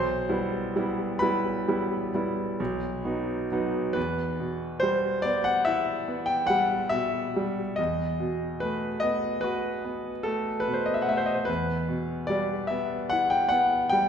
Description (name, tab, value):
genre	classical, romantic nocturne for solo piano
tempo	42-50 BPM (dotted quarters)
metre	9/8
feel	rubato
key	E minor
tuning	A4 = 439 Hz
part	clear concert grand piano	solo	0.0-14.1 s	B1 to C6	-25 LUFS	equal	none
room	wet recital hall reverb, RT60 1.6 s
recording	recorded in a church or concert hall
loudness	-25 LUFS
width	side -8 dB against mid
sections	0.0-4.0 A section; 4.0-14.1 B section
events	none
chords	0.0 Em/B; 2.6 B; 4.0 Em; 7.8 B7/E; 11.5 Em